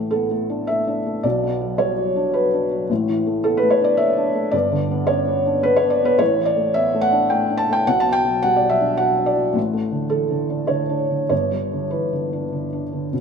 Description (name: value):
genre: neoclassical minimalist piano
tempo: 97-112 BPM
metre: 3/4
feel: rubato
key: unclear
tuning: A4 = 440 Hz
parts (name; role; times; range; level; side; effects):
- felt-muted upright piano; solo; 0.0-13.2 s; G1 to A5; -17 LUFS; equal; none
room: moderate recital hall reverb, RT60 1.5 s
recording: none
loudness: -17 LUFS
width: side -6 dB against mid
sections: 0.0-13.1 A section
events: none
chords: 0.0 Asus4; 1.2 Bm; 2.9 Asus4; 4.5 G; 6.2 Asus4; 7.9 Bm; 9.6 Asus4; 11.3 G